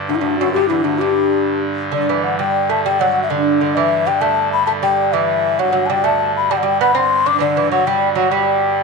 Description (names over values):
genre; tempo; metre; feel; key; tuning
medieval dance; 131 BPM (dotted quarters); 6/8; straight; unclear; A4 = 440 Hz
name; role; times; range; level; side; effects
pipe organ, trumpet; drone; 0.0-8.8 s; G2 to D3; -23 LUFS; right 2 dB; none
mellow bansuri; melody; 0.1-8.8 s; D4 to D6; -17 LUFS; left 8 dB; none
lute; second line; 0.1-8.8 s; D2 to D4; -18 LUFS; right 10 dB; none
room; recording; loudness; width
wet echo chamber reverb, RT60 1.8 s, studio ambience; 1960s-style stereo with parts hard left and right; -14 LUFS; side -3 dB against mid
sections
0.0-1.9 A section; 1.9-8.8 A section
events
none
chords
none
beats
| 0.09 0.55 | 1.01 1.47 | 1.93 2.38 | 2.84 3.30 | 3.76 4.21 | 4.67 5.13 | 5.59 6.04 | 6.50 6.95 | 7.41 7.87 | 8.32 8.78